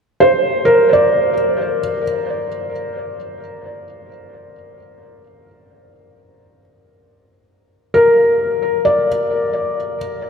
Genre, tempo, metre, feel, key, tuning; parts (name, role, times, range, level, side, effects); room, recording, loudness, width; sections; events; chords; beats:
ambient; free time; A4 = 440 Hz
felt-muted upright piano; solo; 0.2-10.3 s; Bb4 to D5; -14 LUFS; equal; tape echo
wet cathedral reverb, RT60 5.5 s; in a vast, echoing space; -13 LUFS; side -5 dB against mid
0.0-10.3 A section
0.0 C5
free time